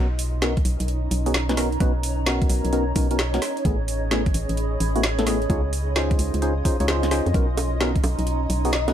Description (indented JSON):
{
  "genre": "UK garage, two-step garage",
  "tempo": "130 BPM",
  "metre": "4/4",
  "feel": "swing 65% on 16ths",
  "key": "B major",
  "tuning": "A4 = 440 Hz",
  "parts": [
    { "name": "ethereal airy pad", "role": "sustained chords", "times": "0.1-8.9 s", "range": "C#4 to D#5", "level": "-34 LUFS", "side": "right 1 dB", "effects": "ensemble chorus, built-in reverb, sidechain pumping" },
    { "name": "percussive organ stab", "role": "stabs", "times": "0.0-8.9 s", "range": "A3 to C#5", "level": "-26 LUFS", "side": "left 1 dB", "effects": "chorus, ping-pong delay" },
    { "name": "organ-like FM bass", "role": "bass", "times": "0.0-8.9 s", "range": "A1 to E#2", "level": "-24 LUFS", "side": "equal", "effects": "none" },
    { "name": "granular cloud pad", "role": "texture", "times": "0.0-8.9 s", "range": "D#4 to B5", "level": "-31 LUFS", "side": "right 2 dB", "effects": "built-in reverb, sidechain pumping" },
    { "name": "garage drum kit", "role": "drums", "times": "0.2-8.9 s", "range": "bongos, hi-hat, snare drum", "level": "-27 LUFS", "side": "right 1 dB", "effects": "overdrive" },
    { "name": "electronic kick drum", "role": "drums", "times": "0.6-8.0 s", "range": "none", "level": "-22 LUFS", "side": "equal", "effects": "overdrive" },
    { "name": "bell-like FM electric piano", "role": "melody", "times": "8.7-8.9 s", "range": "D#5", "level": "-26 LUFS", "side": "left 6 dB", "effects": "chorus" }
  ],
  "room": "little or no reverb",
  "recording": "none",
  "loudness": "-20 LUFS",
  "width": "side -10 dB against mid",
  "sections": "0.0-8.9 A section",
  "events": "filter sweep on synth stab 0.0-8.9",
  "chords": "0.0 Bmaj9; 3.4 Amaj9; 5.5 C#maj9; 7.3 Bmaj9"
}